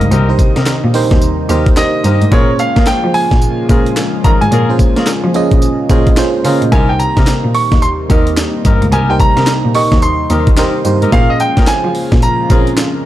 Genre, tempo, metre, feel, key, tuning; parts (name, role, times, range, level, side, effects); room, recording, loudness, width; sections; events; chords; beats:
R&B, new jack swing; 109 BPM; 4/4; swing 62% on 16ths; Bb dorian; A4 = 440 Hz
bright concert grand piano; melody; 0.0-13.1 s; Db5 to Db6; -17 LUFS; right 1 dB; ping-pong delay
FM electric piano; accompaniment; 0.0-13.1 s; C4 to Eb5; -18 LUFS; right 4 dB; chorus
chorused pulse-width pad; sustained chords; 0.0-13.1 s; C3 to F4; -21 LUFS; left 2 dB
mellow horn section; stabs; 0.0-12.7 s; C4 to Bb4; -22 LUFS; left 5 dB
warm cello; bass; 0.0-12.7 s; C2 to Bb3; -15 LUFS; equal
breakbeat sampler-style drum kit; drums; 0.0-12.9 s; handclaps, hi-hat, kick drum, snare drum, tambourine; -13 LUFS; equal
little or no reverb; dark, warm production; -9 LUFS; side -13 dB against mid
0.0-13.1 A section
0.0 Cm7; 2.3 Bbm7; 6.7 Cm7; 11.1 Bbm7
| 0.12 0.67 1.22 1.77 | 2.32 2.87 3.42 3.97 | 4.52 5.07 5.62 6.17 | 6.72 7.27 7.82 8.37 | 8.92 9.47 10.02 10.57 | 11.12 11.68 12.23 12.78